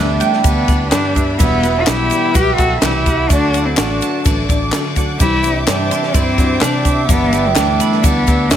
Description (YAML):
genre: indie folk with a building arrangement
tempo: 126 BPM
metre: 4/4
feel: straight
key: G major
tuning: A4 = 435 Hz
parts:
  - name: dark cello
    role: melody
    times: 0.0-8.6 s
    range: G3 to G4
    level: -17 LUFS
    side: left 2 dB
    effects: none
  - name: warm trumpet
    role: second line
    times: 0.0-8.6 s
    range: B3 to B4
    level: -25 LUFS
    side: right 8 dB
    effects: digital delay
  - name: dark upright piano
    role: accompaniment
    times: 0.0-8.6 s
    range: G1 to D5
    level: -28 LUFS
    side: right 4 dB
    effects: none
  - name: picked twelve-string acoustic guitar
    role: accompaniment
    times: 0.0-8.6 s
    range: E2 to F#4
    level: -24 LUFS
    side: left 8 dB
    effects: none
  - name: dark studio string section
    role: sustained chords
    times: 0.0-8.6 s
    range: G4 to D6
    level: -26 LUFS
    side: equal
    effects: none
  - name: mandolin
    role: arpeggios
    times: 0.0-8.6 s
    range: B4 to E6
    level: -22 LUFS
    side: right 11 dB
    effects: none
  - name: fingered electric bass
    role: bass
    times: 0.0-8.6 s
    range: E1 to D3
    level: -21 LUFS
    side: equal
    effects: none
  - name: compact cocktail drum kit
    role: drums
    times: 0.2-8.6 s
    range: kick drum, ride cymbal, snare drum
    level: -17 LUFS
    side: equal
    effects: none
  - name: egg shaker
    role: percussion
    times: 0.2-8.6 s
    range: none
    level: -28 LUFS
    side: right 18 dB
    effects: none
  - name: group handclap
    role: percussion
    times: 0.9-8.6 s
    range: none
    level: -22 LUFS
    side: left 6 dB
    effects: none
room: light reverb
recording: none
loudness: -12 LUFS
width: side -10 dB against mid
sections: 0.0-8.6 A section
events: none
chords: 0.0 G6; 1.4 Emadd9; 3.3 D; 5.2 Cadd9; 7.1 G6